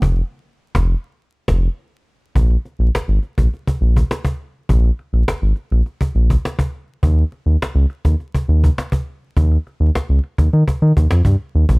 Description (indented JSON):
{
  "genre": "funk",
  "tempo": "103 BPM",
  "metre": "4/4",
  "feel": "straight",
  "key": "Bb dorian",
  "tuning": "A4 = 439 Hz",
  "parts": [
    { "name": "round analog bass", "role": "bass", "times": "0.0-11.8 s", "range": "F1 to Eb3", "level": "-13 LUFS", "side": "equal", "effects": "none" },
    { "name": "cajon", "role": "drums", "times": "0.0-11.8 s", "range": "none", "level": "-20 LUFS", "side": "equal", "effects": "none" }
  ],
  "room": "little or no reverb",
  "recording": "vinyl crackle",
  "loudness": "-15 LUFS",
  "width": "side -34 dB against mid",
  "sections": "0.0-2.4 A section; 2.4-11.8 B section",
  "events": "band accent 0.0-2.4",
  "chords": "none"
}